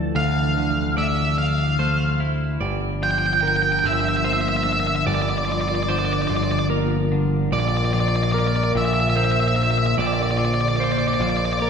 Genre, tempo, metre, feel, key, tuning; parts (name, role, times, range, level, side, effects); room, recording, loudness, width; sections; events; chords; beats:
post-rock; 49 BPM (dotted quarters); 6/8; straight; G dorian; A4 = 440 Hz
octave-fuzz lead guitar; melody; 0.0-11.7 s; D5 to A5; -23 LUFS; right 1 dB; distortion
deep dark ambient pad; sustained chords; 0.0-11.7 s; D3 to Bb4; -30 LUFS; right 1 dB; chorus, built-in reverb
clean electric guitar; arpeggios; 0.0-11.7 s; Bb4 to F5; -30 LUFS; right 4 dB
twelve-string electric guitar; arpeggios; 0.0-11.7 s; G2 to E4; -26 LUFS; left 3 dB; spring reverb
growling picked electric bass; bass; 0.0-11.7 s; G1 to D2; -24 LUFS; equal; overdrive
wet concert hall reverb, RT60 2.0 s; recorded in a church or concert hall; -18 LUFS; side -6 dB against mid
0.0-2.6 A section; 2.6-11.7 B section
0.0 Dmadd9; 2.6 Gm7; 7.5 Bb
| 0.15 1.38 | 2.61 3.84 | 5.07 6.29 | 7.52 8.75 | 9.97 11.20